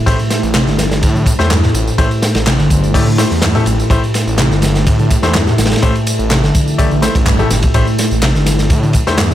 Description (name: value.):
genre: breakbeat, breaks.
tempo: 125 BPM.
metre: 4/4.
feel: straight.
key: A minor.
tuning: A4 = 440 Hz.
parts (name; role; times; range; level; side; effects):
deep dark ambient pad; sustained chords; 0.0-9.3 s; A3 to C5; -21 LUFS; right 1 dB; chorus, built-in reverb, vintage 12-bit sampler grit, sidechain pumping.
hollow-body short-scale picked electric bass; riff; 0.0-9.3 s; G2 to D3; -16 LUFS; equal; overdrive, tape echo.
bright grand piano; stabs; 0.1-9.2 s; A3 to D5; -20 LUFS; left 4 dB; tape echo.
detuned saw bass; bass; 0.1-9.3 s; G1 to A2; -17 LUFS; equal; none.
crunchy breakbeat drum kit; drums; 0.1-9.3 s; hi-hat, kick drum, ride cymbal, snare drum; -16 LUFS; equal; none.
electronic tambourine and handclaps; drums; 0.1-9.3 s; none; -23 LUFS; equal; none.
congas; percussion; 0.8-9.3 s; none; -28 LUFS; left 3 dB; none.
room: small room ambience.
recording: faint mains hum.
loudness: -10 LUFS.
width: side -12 dB against mid.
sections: 0.0-9.3 A section.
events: none.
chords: 0.0 Am7.